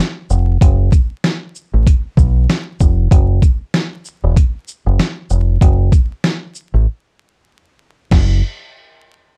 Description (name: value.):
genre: hip hop, boom-bap hip-hop.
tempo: 96 BPM.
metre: 4/4.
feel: swing 59% on 16ths.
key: unclear.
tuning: A4 = 435 Hz.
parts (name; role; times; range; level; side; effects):
boom bap sampler-style drum kit; drums; 0.0-8.3 s; crash cymbal, hi-hat, kick drum, shaker, snare drum; -15 LUFS; equal; none.
deep dub fingered electric bass; bass; 0.3-8.4 s; E1 to B1; -15 LUFS; equal; none.
room: little or no reverb.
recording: dark, warm production, vinyl crackle.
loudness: -15 LUFS.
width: mono.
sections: 0.0-8.1 A section; 8.1-9.4 B section.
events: break 6.9-8.1.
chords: none.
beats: | 0.61 1.24 1.86 2.49 | 3.11 3.74 4.36 4.99 | 5.61 6.24 6.86 7.49 | 8.11.